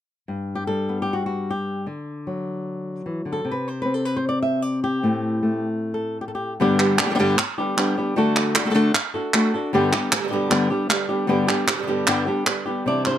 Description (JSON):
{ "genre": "flamenco", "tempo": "153 BPM", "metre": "4/4", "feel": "straight", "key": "G major", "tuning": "A4 = 442 Hz", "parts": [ { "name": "flamenco guitar", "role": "melody", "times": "0.3-13.2 s", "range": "G2 to E5", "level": "-21 LUFS", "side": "left 2 dB", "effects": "none" }, { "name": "flamenco guitar", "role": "stabs", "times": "6.6-13.2 s", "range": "G2 to G4", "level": "-26 LUFS", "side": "right 5 dB", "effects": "none" }, { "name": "palmas hand claps", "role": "percussion", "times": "6.8-13.2 s", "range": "none", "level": "-22 LUFS", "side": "right 3 dB", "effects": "none" } ], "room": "light reverb", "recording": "close, detailed microphones", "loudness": "-20 LUFS", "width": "side -10 dB against mid", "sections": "0.3-6.6 A section; 6.6-12.9 B section", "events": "none", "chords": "0.3 G; 1.9 D; 3.4 N.C.; 5.0 Am; 6.6 G; 8.2 D; 9.7 G", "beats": "| 0.29 0.68 1.08 1.47 | 1.87 2.26 2.66 3.05 | 3.45 3.84 4.24 4.63 | 5.03 5.42 5.82 6.21 | 6.60 6.99 7.38 7.78 | 8.17 8.56 8.95 9.34 | 9.73 10.12 10.51 10.90 | 11.29 11.69 12.08 12.47 | 12.86" }